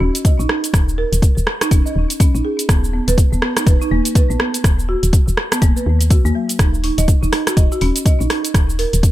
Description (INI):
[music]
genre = afro house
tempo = 123 BPM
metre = 4/4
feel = swing 59% on 16ths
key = unclear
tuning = A4 = 440 Hz
[part]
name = folk marimba with medium mallets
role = arpeggios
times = 0.0-8.9 s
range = F#3 to Eb5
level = -21 LUFS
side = right 1 dB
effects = sidechain pumping, ping-pong delay
[part]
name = woody FM bass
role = bass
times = 0.0-9.1 s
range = Eb1 to D#2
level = -19 LUFS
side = equal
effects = sidechain pumping
[part]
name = deep house drum kit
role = drums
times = 0.1-9.1 s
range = cabasa, hi-hat, rim click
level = -21 LUFS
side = right 1 dB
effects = none
[part]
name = electronic kick drum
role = drums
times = 0.2-9.1 s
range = none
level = -13 LUFS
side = equal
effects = none
[sound]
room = digital ambience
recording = none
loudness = -13 LUFS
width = side -15 dB against mid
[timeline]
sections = 0.0-9.1 A section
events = none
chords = 0.0 N.C.; 2.7 B/D#; 6.6 N.C.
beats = 0.25 | 0.74 1.23 1.72 2.20 | 2.69 3.18 3.67 4.15 | 4.64 5.13 5.62 6.11 | 6.59 7.08 7.57 8.06 | 8.54 9.03